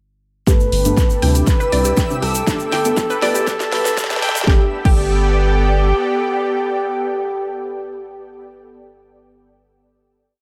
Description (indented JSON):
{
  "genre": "progressive house",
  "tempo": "120 BPM",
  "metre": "4/4",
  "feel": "straight",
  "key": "G major",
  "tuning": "A4 = 440 Hz",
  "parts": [
    { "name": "expressive portamento lead", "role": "melody", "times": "0.5-8.9 s", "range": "G4 to B4", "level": "-24 LUFS", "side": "equal", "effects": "chorus, sidechain pumping, analog delay" },
    { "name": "supersaw pad", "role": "sustained chords", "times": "0.8-8.5 s", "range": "B3 to E6", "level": "-28 LUFS", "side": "equal", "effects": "ensemble chorus, sidechain pumping, low-pass filter" },
    { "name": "analog pluck", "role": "arpeggios", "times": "0.5-5.0 s", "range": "G4 to G5", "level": "-26 LUFS", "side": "equal", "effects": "chorus, sidechain pumping, diffuse ambient delay" },
    { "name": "deep mellow chord stab", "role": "stabs", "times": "0.5-8.9 s", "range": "G2 to B4", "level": "-25 LUFS", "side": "equal", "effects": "ensemble chorus, sidechain pumping, diffuse ambient delay" },
    { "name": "electronic kick drum", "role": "drums", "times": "0.5-5.0 s", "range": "none", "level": "-18 LUFS", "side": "equal", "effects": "overdrive" },
    { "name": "house drum kit", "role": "drums", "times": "0.5-5.0 s", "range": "crash cymbal, hi-hat, rim click, snare drum", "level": "-27 LUFS", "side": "equal", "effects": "overdrive" },
    { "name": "egg shaker", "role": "percussion", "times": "0.5-4.5 s", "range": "none", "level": "-31 LUFS", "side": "equal", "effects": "none" },
    { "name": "twinkling granular texture", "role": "texture", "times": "1.2-4.5 s", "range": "E6", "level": "-37 LUFS", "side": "equal", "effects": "none" },
    { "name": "saturated sub bass", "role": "bass", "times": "0.7-5.9 s", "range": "E1 to D2", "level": "-20 LUFS", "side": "equal", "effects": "sidechain pumping" }
  ],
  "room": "moderate plate reverb, RT60 1.6 s",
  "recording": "dreamy mix soaked in reverb, high-pass filter",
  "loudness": "-17 LUFS",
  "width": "mono",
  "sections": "0.5-4.5 build; 4.5-8.5 final chord",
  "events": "build-up 0.5-4.5; drum fill 0.5-4.5; filter sweep on synth pluck 0.5-4.5; filter sweep on supersaw synth 0.5-4.5; filter sweep 0.5-4.5",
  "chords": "0.5 Gadd9; 1.5 Cadd9; 2.5 Gadd9; 3.5 Em; 4.5 Gadd9",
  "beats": "| 0.47 0.97 1.47 1.97 | 2.47 2.97 3.47 3.97 | 4.47 4.97 5.47 5.97 | 6.47 6.97 7.47 7.97"
}